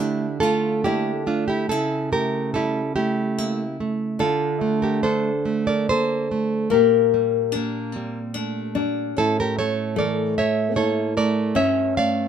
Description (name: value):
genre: romantic duo for nylon-string guitar and classical guitar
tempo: 73 BPM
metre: 3/4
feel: uneven beats, rubato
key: D minor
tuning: A4 = 435 Hz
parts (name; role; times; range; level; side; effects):
- nylon-string guitar; melody; 0.0-12.3 s; A3 to F4; -25 LUFS; left 8 dB; none
- nylon-string guitar; accompaniment; 0.0-12.3 s; G2 to F5; -21 LUFS; right 3 dB; none
room: moderate studio reverb, RT60 0.6 s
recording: minimal, uncompressed stereo recording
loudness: -20 LUFS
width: side -8 dB against mid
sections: 0.0-12.3 A section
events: none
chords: 0.0 Dm; 1.7 A7/C#; 4.2 Dm; 6.7 Gm/Bb; 9.2 A; 11.6 A7/G